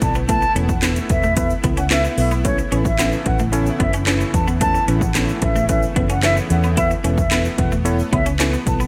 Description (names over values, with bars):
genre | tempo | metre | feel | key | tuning
dance-pop | 111 BPM | 4/4 | straight | A major | A4 = 445 Hz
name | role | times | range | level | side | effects
concert flute | melody | 0.0-8.8 s | C#5 to A5 | -25 LUFS | equal | sidechain pumping, digital delay
mellow tine electric piano | accompaniment | 0.0-8.8 s | B3 to D5 | -27 LUFS | equal | none
supersaw pad | sustained chords | 0.0-8.9 s | C#3 to E4 | -31 LUFS | equal | lush chorus, sidechain pumping
vintage muted fingered electric bass | bass | 0.0-8.9 s | E1 to E2 | -23 LUFS | equal | sidechain pumping
house drum kit | drums | 0.0-8.8 s | handclaps, hi-hat, kick drum, snare drum | -23 LUFS | equal | overdrive, gated reverb
egg shaker | percussion | 0.0-8.9 s | none | -40 LUFS | equal | none
electric guitar at the edge of break-up | riff | 0.2-8.9 s | A3 to E4 | -30 LUFS | equal | analog chorus
room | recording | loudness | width
light reverb | bright 1980s-style digital production | -18 LUFS | mono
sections
0.0-8.9 A section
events
none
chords
0.0 Esus4; 2.4 Aadd9; 6.8 Esus4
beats
| 0.29 0.83 1.37 1.91 | 2.45 2.99 3.53 4.07 | 4.61 5.15 5.69 6.23 | 6.77 7.31 7.85 8.39